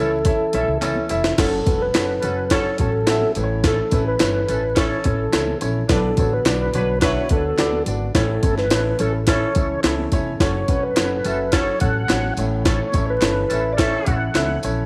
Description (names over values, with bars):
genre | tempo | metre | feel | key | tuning
uptempo 1960s-style soul | 106 BPM | 4/4 | straight | A major | A4 = 441 Hz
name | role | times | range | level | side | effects
mellow tonewheel organ | melody | 0.0-14.6 s | A4 to F#5 | -26 LUFS | equal | chorus vibrato, slow rotary speaker, slapback echo
dark horn section | second line | 0.0-14.2 s | E3 to B4 | -32 LUFS | equal | none
clear upright piano | accompaniment | 0.0-14.8 s | A2 to E5 | -28 LUFS | equal | none
mellow tonewheel organ | sustained chords | 0.0-14.9 s | D3 to A4 | -35 LUFS | equal | none
upright bass | bass | 0.0-14.9 s | E1 to D2 | -27 LUFS | equal | none
jungle sampler-style drum kit | drums | 0.2-14.8 s | crash cymbal, hi-hat, kick drum, snare drum | -23 LUFS | equal | none
tambourine and handclaps | percussion | 0.3-14.8 s | none | -38 LUFS | equal | none
congas | percussion | 0.5-14.6 s | none | -37 LUFS | equal | none
room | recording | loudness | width
light reverb, small room ambience | vinyl crackle | -20 LUFS | mono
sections
0.0-1.4 A section; 1.4-14.9 B section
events
band accent 0.0-1.4; drum fill 0.3-1.4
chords
0.0 A; 1.4 F#m; 3.4 A; 5.9 Bm; 8.1 A; 10.4 F#m; 12.4 A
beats
0.25 0.82 | 1.38 1.94 2.51 3.07 | 3.63 4.20 4.76 5.33 | 5.89 6.45 7.02 7.58 | 8.14 8.71 9.27 9.84 | 10.40 10.96 11.53 12.09 | 12.66 13.22 13.79 14.35